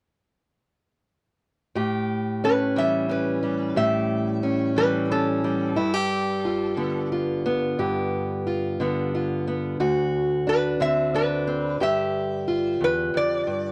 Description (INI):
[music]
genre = acoustic country blues, solo or duo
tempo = 60 BPM (dotted quarters)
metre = 12/8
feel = straight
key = unclear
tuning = A4 = 438 Hz
[part]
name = fingerpicked acoustic archtop guitar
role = accompaniment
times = 1.8-13.7 s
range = D2 to G4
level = -26 LUFS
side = equal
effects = none
[part]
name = metal-body resonator slide guitar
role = melody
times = 2.4-13.7 s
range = A4 to E5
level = -28 LUFS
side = equal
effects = none
[sound]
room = moderate studio reverb, RT60 0.6 s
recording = dark, warm production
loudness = -24 LUFS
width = mono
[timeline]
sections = 1.8-13.7 A section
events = none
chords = 1.8 A7; 5.8 G7; 9.8 D7; 11.8 G5